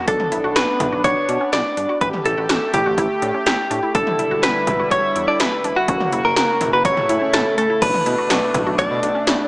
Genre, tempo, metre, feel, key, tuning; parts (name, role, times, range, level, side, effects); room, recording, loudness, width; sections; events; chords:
synth-pop; 124 BPM; 4/4; straight; B minor; A4 = 440 Hz
direct-recorded clean electric guitar; melody; 0.0-9.5 s; F#4 to D5; -18 LUFS; equal
chorused pulse-width pad; sustained chords; 0.0-9.5 s; B2 to G4; -24 LUFS; equal
resonant blip pluck; arpeggios; 0.0-9.5 s; C#4 to F#4; -27 LUFS; left 1 dB; chorus, tape echo
smooth synth bass; bass; 0.1-9.4 s; E1 to B2; -27 LUFS; equal
80s electronic pad drums; drums; 0.1-9.4 s; crash cymbal, hi-hat, kick drum, snare drum, toms; -22 LUFS; equal; gated reverb on snare and toms, gated reverb
moderate lush hall reverb, RT60 2.2 s; small speaker sound; -16 LUFS; side -24 dB against mid
0.0-7.8 A section; 7.8-9.5 B section
0.1 Bmadd9; 2.0 A7; 3.9 Em7; 5.9 F#; 6.9 A; 7.8 Bm7